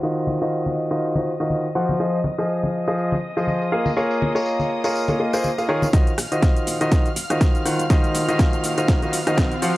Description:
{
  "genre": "piano house",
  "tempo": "122 BPM",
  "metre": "4/4",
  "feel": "swing 57% on 16ths",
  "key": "Eb dorian",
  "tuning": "A4 = 440 Hz",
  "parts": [
    { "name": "dark studio violin section", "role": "sustained chords", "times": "0.0-9.8 s", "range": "Eb5 to F6", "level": "-32 LUFS", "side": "equal", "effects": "sidechain pumping" },
    { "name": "clear grand piano", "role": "riff", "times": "0.0-9.8 s", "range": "Eb3 to Gb5", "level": "-21 LUFS", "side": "equal", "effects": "vintage 12-bit sampler grit, sidechain pumping, low-pass filter" },
    { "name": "tambourine and congas", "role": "percussion", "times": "0.0-5.9 s", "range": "none", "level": "-26 LUFS", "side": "left 1 dB", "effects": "none" },
    { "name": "downlifter and riser", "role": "sound effects", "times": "0.0-2.0, 7.8-9.8 s", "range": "none", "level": "-37 LUFS", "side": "equal", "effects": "none" },
    { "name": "solid FM bass", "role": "bass", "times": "5.9-9.7 s", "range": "Eb1 to Bb1", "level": "-36 LUFS", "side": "right 1 dB", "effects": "none" },
    { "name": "electronic kick drum", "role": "drums", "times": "5.9-9.5 s", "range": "none", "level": "-17 LUFS", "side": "equal", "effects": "none" },
    { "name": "house drum kit", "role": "drums", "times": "5.9-9.7 s", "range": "hi-hat, rim click, shaker, snare drum", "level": "-28 LUFS", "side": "equal", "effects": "none" }
  ],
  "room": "small room ambience",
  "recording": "dry, gritty hardware recording, high-pass filter, low-pass filter",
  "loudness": "-18 LUFS",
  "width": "side -17 dB against mid",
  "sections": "0.0-5.9 A section; 5.9-9.8 B section",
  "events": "filter sweep 0.0-5.9; build-up 5.9-9.8; drum fill 5.9-9.8",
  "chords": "0.0 Ebm69; 2.0 Fm7; 3.7 Bbm7; 5.9 Ebm69"
}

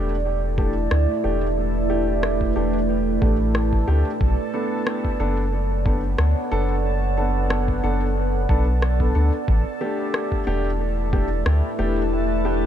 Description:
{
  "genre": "ambient dub",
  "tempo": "91 BPM",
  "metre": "4/4",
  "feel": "swing 54% on 16ths",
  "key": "A mixolydian",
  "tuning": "A4 = 441 Hz",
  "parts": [
    { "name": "deep dark ambient pad", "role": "sustained chords", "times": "0.0-12.7 s", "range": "A3 to F#5", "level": "-25 LUFS", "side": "right 2 dB", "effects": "chorus, built-in reverb" },
    { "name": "dark upright piano", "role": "stabs", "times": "0.0-12.7 s", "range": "A3 to A4", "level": "-28 LUFS", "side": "left 2 dB", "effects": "dub echo" },
    { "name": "soft dub sub bass", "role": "bass", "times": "0.0-12.7 s", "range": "E1 to D2", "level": "-22 LUFS", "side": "equal", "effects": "tube saturation" },
    { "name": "bubbling stepped-filter texture", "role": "texture", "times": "0.3-12.7 s", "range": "A4 to A5", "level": "-35 LUFS", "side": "right 2 dB", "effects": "chorus, built-in reverb" },
    { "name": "electronic kick drum", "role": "drums", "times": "0.6-11.3 s", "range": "none", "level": "-23 LUFS", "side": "equal", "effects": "none" },
    { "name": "electronic rim click", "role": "drums", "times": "0.9-11.6 s", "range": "none", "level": "-29 LUFS", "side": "left 1 dB", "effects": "dub echo" }
  ],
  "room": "little or no reverb",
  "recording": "none",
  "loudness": "-19 LUFS",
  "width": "side -10 dB against mid",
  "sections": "0.0-12.7 A section",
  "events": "none",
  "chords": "0.0 A7sus4; 4.2 Bm7; 9.5 A7sus4"
}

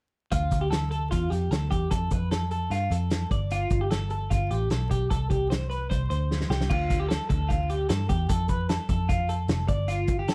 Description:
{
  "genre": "jangly indie pop",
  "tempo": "151 BPM",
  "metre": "4/4",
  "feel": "straight",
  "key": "D dorian",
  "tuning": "A4 = 440 Hz",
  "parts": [
    { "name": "twelve-string electric guitar", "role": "arpeggios", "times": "0.3-10.3 s", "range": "F4 to D5", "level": "-33 LUFS", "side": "equal", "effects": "none" },
    { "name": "vintage muted picked electric bass", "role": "bass", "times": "0.3-10.3 s", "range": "F1 to G2", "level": "-30 LUFS", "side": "equal", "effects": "none" },
    { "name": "vintage drum kit", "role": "drums", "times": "0.3-10.3 s", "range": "crash cymbal, hi-hat, kick drum, snare drum", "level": "-31 LUFS", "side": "equal", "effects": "none" }
  ],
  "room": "studio reverb",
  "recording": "vinyl crackle",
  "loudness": "-27 LUFS",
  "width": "mono",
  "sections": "0.3-6.7 A section; 6.7-10.3 B section",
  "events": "drum fill 6.3-6.7",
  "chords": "0.3 Dm; 1.9 F; 3.3 G; 5.1 C5; 6.7 Dm; 8.3 F; 9.7 G5"
}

